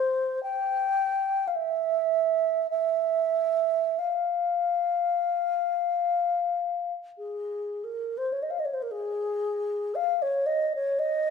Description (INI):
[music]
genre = classical, free, expressive piece for unaccompanied alto flute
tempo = 38-59 BPM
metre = 4/4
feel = rubato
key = F minor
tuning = A4 = 439 Hz
[part]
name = mellow wooden-headed alto flute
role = solo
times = 0.0-11.3 s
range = Ab4 to G5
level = -25 LUFS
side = equal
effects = none
[sound]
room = wet recital hall reverb, RT60 1.8 s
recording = none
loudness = -25 LUFS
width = side -5 dB against mid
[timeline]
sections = 0.0-7.8 A section; 7.8-11.3 B section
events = none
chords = none